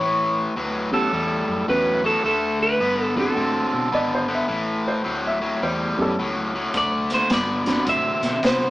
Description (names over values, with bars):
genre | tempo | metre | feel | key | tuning
electric blues shuffle | 107 BPM | 4/4 | swing 64% on 8ths | unclear | A4 = 440 Hz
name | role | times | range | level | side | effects
electric guitar through a small old amp | melody | 0.0-8.7 s | A4 to E5 | -22 LUFS | equal | phaser
cranked stack guitar | riff | 0.0-8.7 s | A2 to C4 | -24 LUFS | left 1 dB | overdrive
vintage muted fingered electric bass | bass | 0.0-8.7 s | G#1 to C3 | -33 LUFS | equal | none
reed electric piano | accompaniment | 0.9-8.4 s | E3 to G4 | -27 LUFS | right 2 dB | none
warm upright piano | second line | 3.9-6.3 s | C#4 to E5 | -26 LUFS | equal | none
raw garage drum kit | drums | 6.7-8.6 s | hi-hat, kick drum, snare drum | -25 LUFS | equal | none
room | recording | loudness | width
wet studio reverb, RT60 0.9 s | band playing live in one room, small speaker sound | -19 LUFS | side -17 dB against mid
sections
0.0-8.7 A section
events
none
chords
0.0 A9; 2.2 D9; 4.5 A7; 6.7 D9